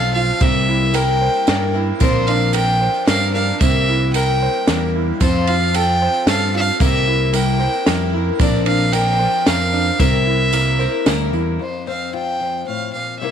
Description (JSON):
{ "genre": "indie folk with a building arrangement", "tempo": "113 BPM", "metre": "3/4", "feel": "straight", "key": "F major", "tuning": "A4 = 440 Hz", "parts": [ { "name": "rich fiddle", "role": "melody", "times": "0.0-13.3 s", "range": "C5 to G5", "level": "-20 LUFS", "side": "right 1 dB", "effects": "none" }, { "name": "picked plugged-in twelve-string acoustic guitar", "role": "accompaniment", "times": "0.0-11.6 s", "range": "Bb2 to Bb4", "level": "-23 LUFS", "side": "left 14 dB", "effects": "none" }, { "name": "warm upright piano", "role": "arpeggios", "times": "0.0-11.6 s", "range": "C4 to C5", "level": "-24 LUFS", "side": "right 14 dB", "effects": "none" }, { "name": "picked electric bass", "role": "bass", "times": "0.0-11.6 s", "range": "Bb1 to G2", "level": "-20 LUFS", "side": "equal", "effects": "none" }, { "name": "compact cocktail drum kit", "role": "drums", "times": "0.4-11.2 s", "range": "kick drum, ride cymbal, snare drum", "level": "-21 LUFS", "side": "equal", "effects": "none" }, { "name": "tambourine", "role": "percussion", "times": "0.4-11.4 s", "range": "none", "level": "-32 LUFS", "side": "right 17 dB", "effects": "none" }, { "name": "fingerpicked steel-string acoustic guitar", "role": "accompaniment", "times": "11.6-13.3 s", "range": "F2 to Bb4", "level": "-26 LUFS", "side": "left 10 dB", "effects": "none" } ], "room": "light reverb", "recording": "1960s-style stereo with parts hard left and right", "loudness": "-15 LUFS", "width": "side -8 dB against mid", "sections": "0.0-11.6 A section; 11.6-13.3 B section", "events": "none", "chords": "0.4 C7; 2.0 Bbadd9; 3.6 C7; 5.2 F; 6.8 C7; 8.4 Bbadd9; 10.0 C7; 11.6 F" }